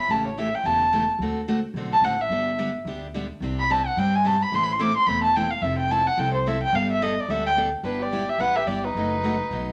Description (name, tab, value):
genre	acoustic string swing (jazz manouche)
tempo	217 BPM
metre	4/4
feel	swing 58% on 8ths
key	unclear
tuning	A4 = 440 Hz
part	dark violin	melody	0.0-9.7 s	B4 to D6	-25 LUFS	equal	none
part	picked steel-string acoustic guitar	accompaniment	0.1-9.7 s	B2 to B4	-32 LUFS	equal	none
part	upright bass	bass	0.1-9.7 s	E1 to G2	-32 LUFS	equal	none
part	bright soprano saxophone	second line	7.9-9.7 s	D4 to B4	-32 LUFS	equal	none
room	wet studio reverb, RT60 0.6 s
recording	none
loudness	-24 LUFS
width	mono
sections	0.0-7.8 A section; 7.8-9.7 B section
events	violin solo 0.0-7.8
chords	0.1 A7; 1.2 D7; 2.3 G; 3.4 Csus2; 4.5 Amadd9; 5.6 Fmaj7; 6.7 Gadd9; 7.8 G6; 9.0 B7/F#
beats	| 0.09 0.37 0.65 0.92 | 1.20 1.48 1.75 2.03 | 2.31 2.58 2.86 3.14 | 3.42 3.69 3.97 4.25 | 4.52 4.80 5.08 5.35 | 5.63 5.91 6.18 6.46 | 6.74 7.01 7.29 7.57 | 7.84 8.12 8.40 8.68 | 8.95 9.23 9.51